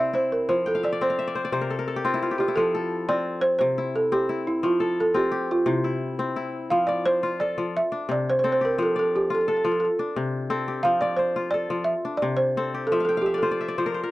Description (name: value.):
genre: west african traditional, West African string and xylophone music.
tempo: 116 BPM (dotted quarters).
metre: 12/8.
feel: straight.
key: F major.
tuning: A4 = 440 Hz.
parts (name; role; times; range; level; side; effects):
balafon; melody; 0.0-14.1 s; E4 to F5; -23 LUFS; right 1 dB; none.
kora; arpeggios; 0.0-14.1 s; C3 to G5; -26 LUFS; left 3 dB; none.
room: light reverb.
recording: dry, close 1970s-style studio recording.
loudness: -22 LUFS.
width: side -17 dB against mid.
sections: 0.0-6.7 A section; 6.7-14.1 B section.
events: kora fill 0.7-2.6, 12.9-14.1.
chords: 0.5 F5; 1.5 N.C.; 2.6 F; 3.6 C; 4.6 F; 5.7 C; 6.7 F; 7.7 C; 8.8 F; 9.8 C5; 10.8 F; 11.9 C; 12.9 F.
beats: | 0.48 1.00 1.52 2.04 | 2.56 3.08 3.60 4.12 | 4.64 5.16 5.67 6.19 | 6.71 7.22 7.74 8.26 | 8.78 9.29 9.81 10.33 | 10.84 11.36 11.88 12.39 | 12.91 13.43 13.95.